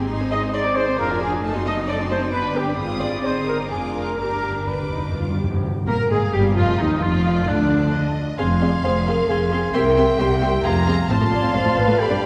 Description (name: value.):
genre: quick classical-period movement for symphony orchestra.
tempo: 132 BPM.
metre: 3/4.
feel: rubato.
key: unclear.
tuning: A4 = 440 Hz.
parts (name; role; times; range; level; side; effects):
warm studio violin section; melody; 0.0-12.3 s; D5 to Eb6; -36 LUFS; equal; none.
rich studio viola section; accompaniment; 0.0-12.3 s; D3 to D5; -29 LUFS; equal; none.
clear studio cello section; bass; 0.0-12.2 s; C2 to F4; -28 LUFS; equal; none.
rich studio double bass section; bass; 0.0-11.8 s; F1 to Eb2; -28 LUFS; equal; none.
rich studio violin section; second line; 0.3-12.3 s; D4 to C6; -32 LUFS; equal; none.
dark trumpet section; stabs; 0.3-5.2 s; G4 to Eb5; -27 LUFS; equal; none.
timpani; percussion; 4.2-6.3 s; G2 to C3; -29 LUFS; equal; none.
hollow small flute group; second line; 5.9-12.3 s; D4 to C6; -32 LUFS; equal; none.
mellow clarinet; second line; 5.9-12.3 s; D4 to F5; -33 LUFS; equal; none.
warm oboe; second line; 5.9-12.3 s; D4 to A5; -32 LUFS; equal; none.
dark French horn section; sustained chords; 5.9-12.3 s; D4 to D5; -25 LUFS; equal; none.
room: wet concert hall reverb, RT60 2.3 s.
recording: heard from further back in the room.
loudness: -20 LUFS.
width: mono.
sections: 0.0-5.6 A section; 5.6-12.3 B section.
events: timpani fill 4.2-5.6.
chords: 0.0 Ab; 1.0 Ddim/F; 1.4 F#dim7; 2.3 G; 2.8 Ab; 3.7 Ddim/F; 4.2 G; 5.6 Fm11; 7.0 Dm/F; 7.9 N.C.; 8.4 Fm; 9.7 C7; 10.7 Fm; 11.1 F/A.